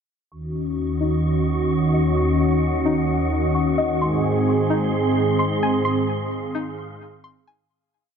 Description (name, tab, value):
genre	hip hop, atmospheric cloud-rap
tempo	130 BPM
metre	4/4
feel	half-time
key	Eb dorian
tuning	A4 = 440 Hz
part	warm analog pad	sustained chords	0.3-7.7 s	Eb2 to Ab4	-20 LUFS	equal	chorus, low-pass filter
part	string-like resonator pluck	arpeggios	0.3-7.7 s	Eb4 to Db6	-28 LUFS	left 3 dB	chorus, phaser, low-pass filter, ping-pong delay
part	wind-like tuned noise texture	texture	0.8-7.7 s	Gb4 to Db6	-29 LUFS	left 1 dB	built-in reverb
room	light reverb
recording	dark, warm production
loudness	-18 LUFS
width	side -7 dB against mid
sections	0.3-7.7 breakdown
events	filter sweep 0.3-7.7; fade-out 5.9-7.7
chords	0.3 Ebm7; 4.0 Ab